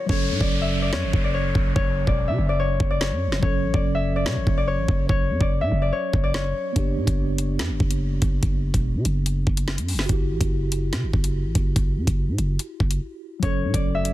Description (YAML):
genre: hip hop, drill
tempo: 144 BPM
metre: 4/4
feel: half-time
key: F# phrygian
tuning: A4 = 440 Hz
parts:
  - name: concert harp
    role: melody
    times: 0.0-8.3, 13.4-14.1 s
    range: C#5 to E5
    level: -27 LUFS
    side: left 4 dB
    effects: none
  - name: mellow tine electric piano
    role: accompaniment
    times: 0.0-14.1 s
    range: F#3 to A4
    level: -31 LUFS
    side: right 2 dB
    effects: medium stereo tremolo
  - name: sweeping resonant pad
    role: sustained chords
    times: 0.0-0.1, 13.4-14.1 s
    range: C#3 to F#4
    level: -48 LUFS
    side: equal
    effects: none
  - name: growling 808-style bass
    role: bass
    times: 0.1-14.1 s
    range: E1 to C#3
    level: -24 LUFS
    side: equal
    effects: none
  - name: drill drum kit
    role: drums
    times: 0.1-14.1 s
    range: hi-hat, kick drum, snare drum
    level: -23 LUFS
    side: equal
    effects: overdrive
  - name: downlifter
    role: sound effects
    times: 0.1-3.4 s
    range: none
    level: -32 LUFS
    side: equal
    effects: none
room: digital ambience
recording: dense, heavily limited modern master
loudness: -20 LUFS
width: side -15 dB against mid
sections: 0.1-14.1 A section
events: hi-hats muted 0.1-6.8; break 13.0-13.4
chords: 0.1 F#m; 6.8 G/F#; 10.1 Emadd9/F#; 13.4 F#m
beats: | 0.09 0.51 0.93 1.34 | 1.76 2.18 2.59 3.01 | 3.43 3.84 4.26 4.68 | 5.09 5.51 5.93 6.34 | 6.76 7.18 7.59 8.01 | 8.43 8.84 9.26 9.68 | 10.09 10.51 10.93 11.34 | 11.76 12.18 12.59 13.01 | 13.43 13.84